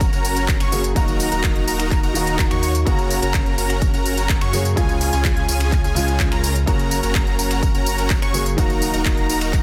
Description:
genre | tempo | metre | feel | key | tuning
EDM, festival progressive house | 126 BPM | 4/4 | straight | F# major | A4 = 439 Hz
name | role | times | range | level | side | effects
warm baby grand piano | accompaniment | 0.0-9.6 s | C#3 to G#4 | -28 LUFS | equal | sidechain pumping, digital delay
unison lead | arpeggios | 0.0-9.6 s | G#5 to C#6 | -29 LUFS | equal | analog chorus, sidechain pumping, digital delay
dense compressed supersaw | riff | 0.0-9.6 s | C#4 to C#5 | -28 LUFS | equal | sidechain pumping, digital delay
saturated sub bass | bass | 0.0-9.6 s | D#1 to F#2 | -26 LUFS | equal | sidechain pumping
electronic kick drum | drums | 0.0-9.6 s | none | -22 LUFS | equal | overdrive, small room ambience
pop drum kit | drums | 0.0-9.6 s | finger snaps, handclaps, hi-hat, tambourine | -28 LUFS | equal | small room ambience
room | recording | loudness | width
light reverb | dense, heavily limited modern master | -19 LUFS | mono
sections
0.0-9.6 A section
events
none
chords
0.0 F#; 1.0 D#m; 2.9 F#; 4.8 C#; 6.7 F#; 8.6 D#m

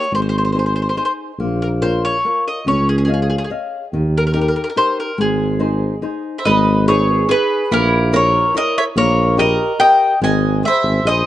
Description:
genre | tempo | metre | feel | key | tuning
italian folk, Italian serenade | 143 BPM | 3/4 | straight | Ab major, G# harmonic minor from 6.5 s | A4 = 440 Hz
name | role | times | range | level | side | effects
mandolin | melody | 0.0-11.3 s | Ab4 to G#5 | -17 LUFS | left 1 dB | none
flamenco guitar | accompaniment | 0.0-11.3 s | Eb3 to F5 | -22 LUFS | left 2 dB | none
mellow tuba | bass | 0.1-11.2 s | Ab1 to Eb2 | -17 LUFS | equal | none
mandolin | second line | 6.4-11.3 s | E4 to D#5 | -20 LUFS | right 3 dB | none
room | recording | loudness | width
light reverb | dark, warm production, nothing above 10.3 kHz | -14 LUFS | side -13 dB against mid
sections
0.0-6.5 A section; 6.5-11.3 B section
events
none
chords
0.1 Ab; 1.4 Bbm; 2.7 Dbadd9; 3.9 Eb; 5.2 Ab; 6.5 G#m; 7.7 A#dim; 9.0 D#/A#; 10.2 G#

